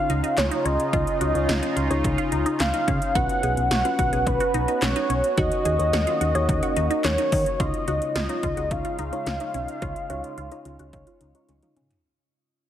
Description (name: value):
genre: synth-pop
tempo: 108 BPM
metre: 4/4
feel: straight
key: unclear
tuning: A4 = 437 Hz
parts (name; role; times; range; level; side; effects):
- warm velvety synth lead; melody; 0.0-11.5 s; B4 to F#5; -26 LUFS; equal; chorus, low-pass filter, shimmer reverb
- mellow FM electric piano; accompaniment; 0.0-12.0 s; C#4 to Ab5; -32 LUFS; left 2 dB; chorus, phaser, tremolo, low-pass filter, shimmer reverb
- sweeping resonant pad; sustained chords; 0.0-12.0 s; Db3 to F#4; -30 LUFS; right 1 dB; chorus, phaser, low-pass filter, shimmer reverb
- resonant blip pluck; arpeggios; 0.0-11.9 s; Db4 to Ab4; -32 LUFS; right 1 dB; phaser, low-pass filter, digital delay, shimmer reverb
- solid FM bass; bass; 0.1-11.9 s; B1 to Eb3; -27 LUFS; equal; none
- 80s electronic pad drums; drums; 0.1-12.0 s; handclaps, hi-hat, kick drum, snare drum, toms; -28 LUFS; equal; gated reverb on snare and toms, overdrive
room: light reverb, digital ambience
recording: heavily compressed radio sound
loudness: -21 LUFS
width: side -10 dB against mid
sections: 0.0-7.6 A section; 7.6-12.0 B section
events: fade-out 7.6-12.0; filter sweep 7.6-12.0; FM electric piano fill 11.2-12.0; drum fill 11.5-12.0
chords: 0.0 Dbadd9; 3.2 Bsus2; 5.4 Ebm7; 7.6 Dbadd9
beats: 0.38 | 0.93 1.49 2.04 2.60 | 3.15 3.71 4.26 4.82 | 5.38 5.93 6.49 7.04 | 7.60 8.15 8.71 9.27 | 9.82 10.38 10.93 11.49